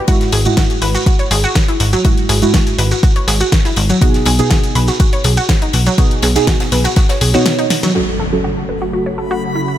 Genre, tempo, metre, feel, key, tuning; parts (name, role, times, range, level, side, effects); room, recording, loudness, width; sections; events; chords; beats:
progressive house; 122 BPM; 4/4; straight; F# dorian; A4 = 442 Hz
analog pluck; arpeggios; 0.1-9.6 s; F#3 to C#5; -20 LUFS; equal; chorus, cassette tape, sidechain pumping, ping-pong delay
deep mellow chord stab; stabs; 0.1-9.8 s; G#2 to C#5; -18 LUFS; right 2 dB; chorus, vintage 12-bit sampler grit, sidechain pumping, ping-pong delay
deep house drum kit; drums; 0.1-7.9 s; hi-hat, snare drum; -19 LUFS; left 1 dB; low-pass filter on hats, low-pass filter on snare, low-pass filter on room
electronic kick drum; drums; 0.1-7.1 s; -13 LUFS; equal
tight funk drum kit; drums; 0.1-7.9 s; ride cymbal, snare drum; -28 LUFS; left 2 dB; sidechain pumping on cymbals, high-pass filter on cymbals, high-pass filter on snare, high-pass filter on room
maracas; percussion; 0.1-7.9 s; -26 LUFS; right 2 dB
plucky analog bass; bass; 0.3-7.4 s; G#1 to B1; -15 LUFS; equal; tube saturation, sidechain pumping
warm analog pad; sustained chords; 7.9-9.8 s; C#3 to A4; -21 LUFS; equal; chorus, sidechain pumping
impact; sound effects; 8.0-9.8 s; -24 LUFS; equal
backwards swelling texture; texture; 9.0-9.8 s; B5; -26 LUFS; left 1 dB; built-in reverb, sidechain pumping
little or no reverb; -11 LUFS; side -12 dB against mid
0.0-8.0 A section; 8.0-9.8 B section
kick drops out 7.5-8.0; drum fill 7.7; band accent 7.8; impact 8.0-9.8; filter sweep on synth stab 8.0-9.8
0.1 Eadd9/G#; 4.0 B6; 8.0 F#m
| 0.08 0.57 1.06 1.56 | 2.05 2.54 3.03 3.52 | 4.02 4.51 5.00 5.49 | 5.98 6.47 6.97 7.46 | 7.95 8.44 8.93 9.43